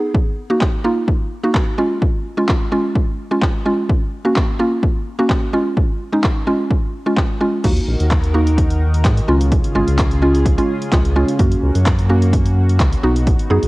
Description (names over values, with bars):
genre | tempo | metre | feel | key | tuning
dance-pop | 128 BPM | 4/4 | straight | unclear | A4 = 440 Hz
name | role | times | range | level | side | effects
mallet-like synth pluck | accompaniment | 0.0-13.7 s | G#3 to G#4 | -18 LUFS | right 1 dB | chorus, sidechain pumping
punchy analog drum machine | drums | 0.1-13.7 s | crash cymbal, handclaps, hi-hat, kick drum | -18 LUFS | equal | cassette tape
chorused pulse-width pad | sustained chords | 7.6-13.7 s | C#3 to A#4 | -24 LUFS | equal | sidechain pumping
round analog bass | bass | 7.6-13.7 s | G#1 to G#2 | -16 LUFS | equal | sidechain pumping
room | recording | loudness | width
light reverb | home recording on cassette | -14 LUFS | side -20 dB against mid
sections
0.0-7.6 A section; 7.6-13.7 B section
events
none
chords
0.1 D#m; 1.8 C#; 3.9 F#; 5.5 C#; 7.6 D#m; 9.3 C#; 11.4 F#; 13.0 B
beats
| 0.14 0.61 1.08 1.55 | 2.02 2.49 2.96 3.42 | 3.89 4.36 4.83 5.30 | 5.77 6.24 6.71 7.17 | 7.64 8.11 8.58 9.05 | 9.52 9.99 10.46 10.93 | 11.39 11.86 12.33 12.80 | 13.27